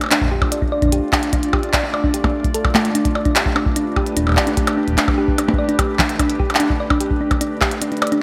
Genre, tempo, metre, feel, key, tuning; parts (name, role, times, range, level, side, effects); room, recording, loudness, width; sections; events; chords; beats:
IDM; 148 BPM; 4/4; straight; A4 = 440 Hz
warbly tape-like pad; sustained chords; 0.0-8.2 s; A3 to D5; -26 LUFS; equal; chorus, built-in reverb, vintage 12-bit sampler grit
glitchy drum kit; drums; 0.0-8.2 s; handclaps, hi-hat, percussion blips; -22 LUFS; equal; overdrive
thumb-piano-like synth pluck; arpeggios; 0.1-8.2 s; A3 to D5; -23 LUFS; equal; chorus, delay
electronic kick drum; drums; 0.2-7.7 s; -23 LUFS; equal
moderate lush hall reverb, RT60 1.6 s, digital ambience; bright 1980s-style digital production; -18 LUFS; mono
0.0-8.2 A section
kick drops out 7.8-8.2
0.0 Dm7; 3.0 G
0.11 0.52 0.92 | 1.33 1.74 2.14 2.55 | 2.95 3.36 3.76 4.17 | 4.57 4.98 5.38 5.79 | 6.19 6.60 7.00 7.41 | 7.82 8.22